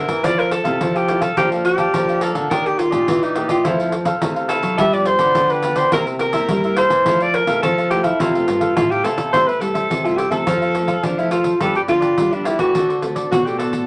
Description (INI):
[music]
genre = samba and choro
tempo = 106 BPM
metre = 4/4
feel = straight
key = F major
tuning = A4 = 438 Hz
[part]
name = breathy alto saxophone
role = melody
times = 0.0-13.9 s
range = D4 to E5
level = -20 LUFS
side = equal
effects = none
[part]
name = cavaquinho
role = accompaniment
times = 0.0-13.9 s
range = D4 to A5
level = -27 LUFS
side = equal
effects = none
[part]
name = nylon-string guitar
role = accompaniment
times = 0.0-13.9 s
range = F2 to A4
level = -31 LUFS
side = equal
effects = none
[part]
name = nylon-string guitar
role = bass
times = 0.0-13.8 s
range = G2 to G3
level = -26 LUFS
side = equal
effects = none
[part]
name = pandeiro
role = percussion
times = 0.1-13.9 s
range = none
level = -28 LUFS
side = equal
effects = none
[sound]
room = wet small room reverb, RT60 0.5 s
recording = none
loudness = -18 LUFS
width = mono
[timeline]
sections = 0.0-9.3 A section; 9.3-13.9 B section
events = none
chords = 0.2 Fmaj7; 1.4 Bbmaj7/F; 2.5 Ebmaj7; 3.6 Fmaj7; 4.8 G7; 5.9 C7; 7.1 Fmaj7; 10.5 F; 11.6 G7; 12.7 D7